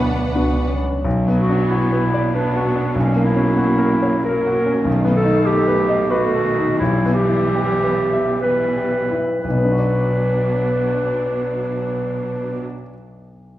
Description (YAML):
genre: classical, romantic movement for piano and orchestra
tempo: 57-101 BPM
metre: 3/4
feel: rubato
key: B minor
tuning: A4 = 440 Hz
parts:
  - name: clear grand piano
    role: melody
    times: 0.0-13.6 s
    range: B1 to E5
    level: -20 LUFS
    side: left 1 dB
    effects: none
  - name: warm symphonic violin section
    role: melody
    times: 0.0-0.8 s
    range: F#5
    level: -34 LUFS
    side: left 2 dB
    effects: none
  - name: warm symphonic violin section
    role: second line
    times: 0.0-0.7 s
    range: B4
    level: -29 LUFS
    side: left 2 dB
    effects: none
  - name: warm studio viola section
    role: accompaniment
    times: 0.0-12.6 s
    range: D#3 to D4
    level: -26 LUFS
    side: right 1 dB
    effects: none
  - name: mellow French horn section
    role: sustained chords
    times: 0.0-1.0 s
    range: C#4 to D4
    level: -29 LUFS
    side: left 1 dB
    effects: none
  - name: dark symphonic double bass section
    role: bass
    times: 0.0-1.0 s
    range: C#2 to D2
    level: -24 LUFS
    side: right 1 dB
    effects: none
  - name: rich symphonic cello section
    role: bass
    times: 0.0-12.6 s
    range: B2 to B3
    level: -26 LUFS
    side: right 3 dB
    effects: none
  - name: clear clarinet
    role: second line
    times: 1.4-12.6 s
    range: C#4 to B4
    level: -20 LUFS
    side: equal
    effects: none
room: wet recital hall reverb, RT60 1.6 s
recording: heard from further back in the room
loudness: -16 LUFS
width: side -14 dB against mid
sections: 0.0-1.0 A section; 1.0-9.4 B section; 9.4-13.6 C section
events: slowing down 3.9-9.4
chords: 0.0 Bm; 3.0 F#7/B; 4.9 B7; 6.8 Em/B; 9.4 Bm